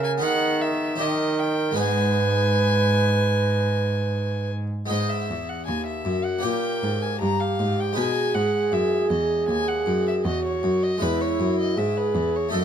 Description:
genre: classical, baroque-style sonata movement with continuo.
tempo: 78 BPM.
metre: 4/4.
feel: straight.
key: G# minor.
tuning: A4 = 440 Hz.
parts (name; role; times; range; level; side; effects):
warm violin; melody; 0.0-12.6 s; B4 to Bb5; -29 LUFS; left 4 dB; none.
baroque flute; second line; 0.0-12.6 s; E4 to B4; -25 LUFS; right 4 dB; none.
harpsichord; accompaniment; 0.0-12.6 s; D#2 to B4; -28 LUFS; left 2 dB; none.
dark cello; bass; 0.0-12.6 s; D#2 to D#3; -26 LUFS; right 1 dB; none.
room: light reverb.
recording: close, detailed microphones.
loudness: -21 LUFS.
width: side -8 dB against mid.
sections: 0.0-4.9 A section; 4.9-12.6 B section.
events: none.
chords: 0.2 G#m/D#; 1.0 D#7; 1.8 G#m; 6.4 Gdim; 8.0 G#m; 11.0 E.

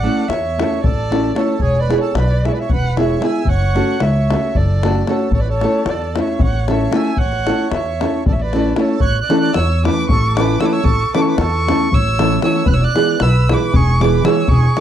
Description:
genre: balkan folk, Balkan wedding band.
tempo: 228 BPM (eighths).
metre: 7/8.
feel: straight.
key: A major.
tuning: A4 = 442 Hz.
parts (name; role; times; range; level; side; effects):
dark violin; melody; 0.0-14.8 s; C#5 to F#6; -22 LUFS; equal; slapback echo.
accordion; second line; 0.0-14.8 s; G#4 to E5; -25 LUFS; right 12 dB; none.
nylon-string guitar; accompaniment; 0.0-14.8 s; E3 to A4; -17 LUFS; right 1 dB; none.
upright bass; bass; 0.0-14.7 s; E1 to E2; -18 LUFS; equal; none.
davul; percussion; 0.2-14.8 s; none; -20 LUFS; left 3 dB; none.
room: little or no reverb.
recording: dry, close 1970s-style studio recording.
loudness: -13 LUFS.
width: side -10 dB against mid.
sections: 0.0-9.0 A section; 9.0-14.8 B section.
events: none.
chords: 0.0 A; 1.6 E; 3.5 F#m; 5.3 A; 12.7 E.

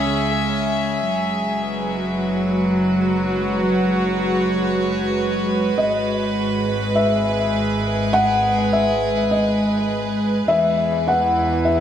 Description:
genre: ambient.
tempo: 51 BPM.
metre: 4/4.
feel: straight.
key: G# minor.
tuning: A4 = 440 Hz.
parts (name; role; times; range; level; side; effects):
rich chamber string section; sustained chords; 0.0-11.8 s; C#3 to E5; -20 LUFS; equal; none.
clear chamber double bass section; bass; 0.0-11.8 s; F#1 to E2; -29 LUFS; equal; none.
bowed-like drone; drone; 0.0-11.8 s; G#3; -26 LUFS; right 1 dB; built-in reverb.
felt-muted upright piano; melody; 5.8-11.8 s; D#5 to F#5; -20 LUFS; left 2 dB; analog delay.
room: wet plate reverb, RT60 3.2 s.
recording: echo-heavy mix.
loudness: -17 LUFS.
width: side -9 dB against mid.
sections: 0.0-11.8 A section.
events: none.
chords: 0.0 C#m; 1.1 F#sus4; 5.8 G#m; 10.5 Esus2.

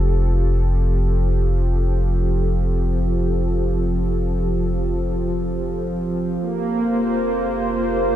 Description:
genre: ambient.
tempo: free time.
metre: none.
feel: none.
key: F major.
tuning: A4 = 439 Hz.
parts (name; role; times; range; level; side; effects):
warm analog pad; sustained chords; 0.0-8.2 s; F3 to C5; -22 LUFS; right 1 dB; chorus, tremolo.
warm sub bass; bass; 0.0-8.2 s; F1; -21 LUFS; equal; none.
room: moderate echo chamber reverb, RT60 2.2 s.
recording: cassette tape.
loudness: -18 LUFS.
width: side -11 dB against mid.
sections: 0.0-8.2 A section.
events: fade-in on analog synth pad 0.0-8.2.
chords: 0.0 F; 6.4 Bbmaj7(no3)/F.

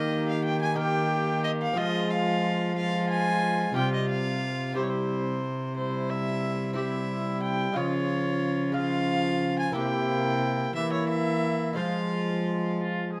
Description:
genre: classical, renaissance-style consort dance.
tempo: 60 BPM (dotted quarters).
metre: 6/8.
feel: straight.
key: unclear.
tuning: A4 = 440 Hz.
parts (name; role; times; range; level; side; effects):
dark violin; melody; 0.0-12.8 s; C5 to Ab5; -33 LUFS; equal; none.
rich viola; second line; 0.0-13.2 s; E4 to Ab4; -37 LUFS; equal; none.
lute; accompaniment; 0.0-13.2 s; C3 to C5; -37 LUFS; equal; none.
warm trombone; accompaniment; 0.0-13.2 s; F3 to Bb3; -34 LUFS; equal; none.
dark cello; bass; 0.0-13.2 s; C3 to F3; -32 LUFS; equal; none.
room: light reverb.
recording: close, detailed microphones.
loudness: -27 LUFS.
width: mono.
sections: 0.0-13.2 A section.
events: none.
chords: 0.0 Eb; 1.8 Fm; 3.8 Csus4; 4.8 C; 7.8 Db; 9.8 C7; 11.8 Fm.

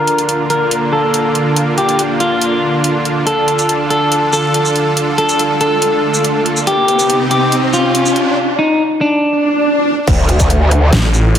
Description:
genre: heavy wobble dubstep.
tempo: 141 BPM.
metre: 4/4.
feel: half-time.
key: D phrygian.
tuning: A4 = 440 Hz.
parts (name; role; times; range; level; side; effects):
clean electric guitar; melody; 0.0-10.0 s; D4 to Bb4; -14 LUFS; left 1 dB; spring reverb, low-pass filter, tape echo.
supersaw pad; sustained chords; 0.0-11.4 s; C3 to A4; -17 LUFS; right 1 dB; sidechain pumping, low-pass filter.
dubstep drum kit; drums; 0.1-11.4 s; crash cymbal, hi-hat, shaker, snare drum; -19 LUFS; right 1 dB; overdrive, high-pass filter on hats, high-pass filter on perc, high-pass filter on cymbals, high-pass filter on snare, high-pass filter on room.
riser, swell and impact; sound effects; 4.8-11.4 s; none; -19 LUFS; equal; none.
growl bass; bass; 10.1-10.9 s; D2; -11 LUFS; equal; chorus, overdrive.
electronic kick drum; drums; 10.1-10.5 s; none; -14 LUFS; equal; overdrive.
snarling distorted saw bass; bass; 10.9-11.3 s; A1; -11 LUFS; equal; distortion, overdrive.
room: moderate lush hall reverb, RT60 1.6 s, digital ambience.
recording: none.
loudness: -11 LUFS.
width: side -9 dB against mid.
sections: 0.0-10.1 A section; 10.1-11.4 B section.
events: build-up 0.0-10.1; filter sweep on clean electric guitar 0.0-10.1; riser 4.8-8.4; swell 9.3-10.1; drop 10.1-11.4; impact 10.1-11.4.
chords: 0.0 Bb/D; 3.3 Dm; 6.7 Cm; 10.1 Dm.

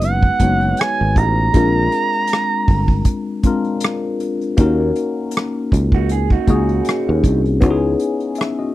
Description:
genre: R&B, neo-soul.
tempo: 79 BPM.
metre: 4/4.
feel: swing 54% on 16ths.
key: unclear.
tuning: A4 = 440 Hz.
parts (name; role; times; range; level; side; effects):
expressive portamento lead; melody; 0.0-3.4 s; F#5 to A#5; -19 LUFS; right 4 dB; chorus.
tine electric piano; accompaniment; 0.0-8.7 s; G#3 to E5; -19 LUFS; left 4 dB; phaser.
sustaining fretless electric bass; bass; 0.0-7.9 s; F#1 to D#2; -18 LUFS; right 1 dB; none.
unplugged drum kit; drums; 0.0-8.6 s; hi-hat, kick drum, rim click; -16 LUFS; equal; none.
electric guitar through a small old amp; second line; 5.9-7.4 s; D#4 to G#4; -23 LUFS; right 12 dB; none.
room: little or no reverb.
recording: dry, close 1970s-style studio recording.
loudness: -14 LUFS.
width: side -15 dB against mid.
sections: 0.0-8.7 A section.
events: none.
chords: 0.0 G#m7; 1.5 A#7; 4.6 D#m7; 7.6 C#m7.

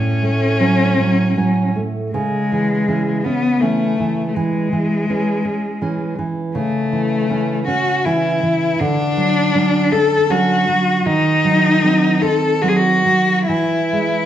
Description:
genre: romantic duo for cello and classical guitar.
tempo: 68-83 BPM.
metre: 3/4.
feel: rubato.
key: A major from 6.5 s.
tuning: A4 = 441 Hz.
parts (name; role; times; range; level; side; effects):
rich cello; melody; 0.0-14.3 s; G#3 to A4; -17 LUFS; left 3 dB; none.
nylon-string guitar; accompaniment; 0.0-14.3 s; A2 to C#4; -18 LUFS; right 3 dB; none.
room: wet recital hall reverb, RT60 1.4 s.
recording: recorded in a church or concert hall.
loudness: -14 LUFS.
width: side -11 dB against mid.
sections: 0.0-14.3 A section.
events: none.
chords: 0.0 F#m/A; 2.1 C#m; 4.4 C#m/E; 6.5 A/C#; 8.8 Dmaj7; 11.1 D#m6; 13.5 E.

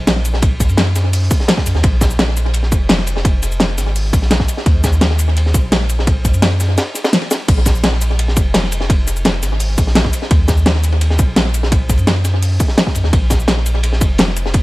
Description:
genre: liquid drum and bass.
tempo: 170 BPM.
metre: 4/4.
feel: straight.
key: unclear.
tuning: A4 = 440 Hz.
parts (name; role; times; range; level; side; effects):
sub bass with octave; bass; 0.0-14.6 s; F1 to Gb2; -16 LUFS; equal; none.
crunchy breakbeat drum kit; drums; 0.1-14.6 s; hi-hat, ride cymbal, snare drum; -21 LUFS; equal; high-pass filter on cymbals, high-pass filter on hats, high-pass filter on snare, high-pass filter on room, tape echo.
pop drum kit; drums; 0.1-14.6 s; crash cymbal, hi-hat, shaker, snare drum; -18 LUFS; equal; overdrive.
electronic kick drum; drums; 0.4-14.6 s; none; -15 LUFS; equal; overdrive.
room: little or no reverb.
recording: echo-heavy mix.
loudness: -12 LUFS.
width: side -19 dB against mid.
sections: 0.0-14.6 A section.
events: break 6.8-7.5.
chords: none.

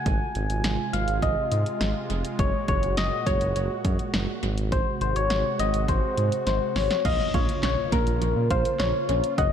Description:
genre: synth-pop.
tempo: 103 BPM.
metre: 4/4.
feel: straight.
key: unclear.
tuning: A4 = 441 Hz.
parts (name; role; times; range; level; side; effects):
soft struck synth lead; melody; 0.0-9.5 s; Bb4 to Ab5; -26 LUFS; left 3 dB; chorus, phaser, tape echo.
sweeping resonant pad; sustained chords; 0.0-9.5 s; Bb2 to Gb4; -32 LUFS; right 2 dB; chorus.
smooth synth bass; bass; 0.1-9.5 s; F1 to Bb2; -27 LUFS; equal; none.
punchy analog drum machine; drums; 0.1-9.5 s; crash cymbal, handclaps, hi-hat, kick drum, snare drum; -28 LUFS; equal; tape echo.
soft round pluck; arpeggios; 7.0-9.5 s; F3 to Gb5; -34 LUFS; right 6 dB; chorus, tape echo.
impact; sound effects; 7.0-9.4 s; none; -37 LUFS; right 1 dB; none.
room: light reverb, digital ambience.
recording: echo-heavy mix.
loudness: -22 LUFS.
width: side -8 dB against mid.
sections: 0.0-7.1 A section; 7.1-9.5 B section.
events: drum fill 6.5-7.1; impact 7.1-9.4.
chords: 0.1 Ab6; 2.4 Gbadd9; 4.4 Ab7; 7.1 Bbm.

